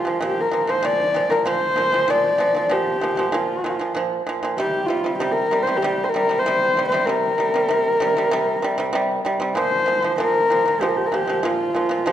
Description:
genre	mongolian traditional, Mongolian folk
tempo	96 BPM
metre	4/4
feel	straight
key	Bb gong mode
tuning	A4 = 436 Hz
part	dark horsehead fiddle	melody	0.0-12.1 s	F4 to D5	-20 LUFS	left 1 dB	none
part	pipa	arpeggios	0.0-12.1 s	Bb2 to G3	-23 LUFS	right 2 dB	none
room	moderate recital hall reverb, RT60 1.5 s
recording	dark, warm production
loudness	-18 LUFS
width	side -10 dB against mid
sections	0.0-9.6 A section; 9.6-12.1 B section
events	none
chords	0.0 Bb5; 4.6 C5; 9.6 Bb5

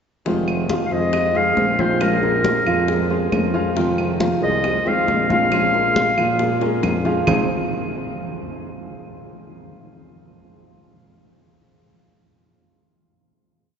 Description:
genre	latin, Cuban son and guajira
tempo	137 BPM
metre	4/4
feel	straight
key	F minor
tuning	A4 = 441 Hz
part	nylon-string guitar	accompaniment	0.3-7.5 s	F2 to F4	-26 LUFS	left 3 dB	none
part	dark grand piano	arpeggios	0.3-7.5 s	F3 to F5	-24 LUFS	right 3 dB	none
part	warm tuba	bass	0.3-7.5 s	F1 to Bb2	-25 LUFS	equal	none
part	bongos	percussion	0.3-7.4 s	none	-30 LUFS	left 5 dB	none
part	congas	percussion	0.3-7.4 s	none	-28 LUFS	equal	none
part	claves	percussion	0.5-7.4 s	none	-33 LUFS	right 2 dB	none
part	warm clarinet	melody	0.9-6.8 s	Bb4 to F5	-21 LUFS	left 1 dB	none
room	wet cathedral reverb, RT60 5.7 s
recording	recorded in a church or concert hall, nothing above 7.8 kHz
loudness	-17 LUFS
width	side -7 dB against mid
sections	0.3-7.3 montuno (vamp); 7.3-9.0 final chord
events	drum fill 6.6-7.3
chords	0.3 Fm7; 2.0 Bbm7; 3.8 Fm7; 5.5 Bbm7; 7.3 Fm7

